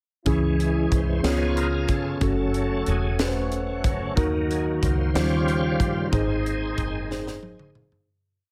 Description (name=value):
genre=slow gospel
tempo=61 BPM (dotted quarters)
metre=6/8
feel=straight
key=unclear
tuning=A4 = 440 Hz
part: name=mellow French horn section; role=sustained chords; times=0.2-8.1 s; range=E3 to G#4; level=-38 LUFS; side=equal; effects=none
part: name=mellow tine electric piano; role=accompaniment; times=0.3-8.1 s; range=G#2 to C#5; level=-28 LUFS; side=equal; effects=none
part: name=bright tonewheel organ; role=sustained chords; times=0.3-7.7 s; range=C#3 to C#5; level=-32 LUFS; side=equal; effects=chorus vibrato, slow rotary speaker
part: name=deep dub fingered electric bass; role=bass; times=0.3-8.0 s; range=E1 to D#2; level=-29 LUFS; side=equal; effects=none
part: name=crisp fusion drum kit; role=drums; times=0.3-8.1 s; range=hi-hat, kick drum, snare drum, toms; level=-30 LUFS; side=equal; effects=none
room=light reverb, studio reverb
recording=none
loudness=-24 LUFS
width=mono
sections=0.3-8.1 verse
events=tonewheel organ solo 0.3-8.1; fade-out 6.1-8.1; drum fill 7.1-8.1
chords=0.3 C#m; 1.2 C#7; 2.2 F#m; 4.2 D#m; 5.1 D#13; 6.1 G#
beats=| 0.26 1.24 | 2.21 3.19 | 4.17 5.14 | 6.12 7.10